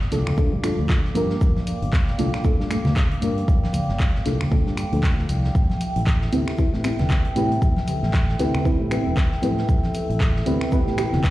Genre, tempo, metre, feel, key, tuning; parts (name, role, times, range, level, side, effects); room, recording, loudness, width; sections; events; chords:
deep house; 116 BPM; 4/4; swing 58% on 16ths; G dorian; A4 = 440 Hz
dark analog pad; sustained chords; 0.0-11.3 s; Bb3 to D6; -31 LUFS; equal; wide subtle chorus, sidechain pumping
deep mellow chord stab; stabs; 0.0-11.3 s; Bb3 to B4; -26 LUFS; equal; chorus, phaser, sidechain pumping, tape echo
fingered electric bass; bass; 0.0-11.2 s; E1 to A2; -24 LUFS; equal; sidechain pumping
big rock drum kit; drums; 0.0-11.3 s; hi-hat, shaker, snare drum; -42 LUFS; right 1 dB; high-pass filter on hats, high-pass filter on snare, high-pass filter on perc, high-pass filter on room
punchy analog drum machine; drums; 0.1-11.3 s; finger snaps, handclaps, hi-hat; -32 LUFS; equal
congas; percussion; 0.3-11.2 s; -28 LUFS; equal
electronic kick drum; drums; 0.4-11.3 s; -20 LUFS; equal
light reverb; played on a big sound system in a bare room, stone room reverb; -19 LUFS; side -16 dB against mid
0.0-11.3 A section
filter sweep on synth stab 0.0-11.3
0.0 Gm7; 5.5 Am7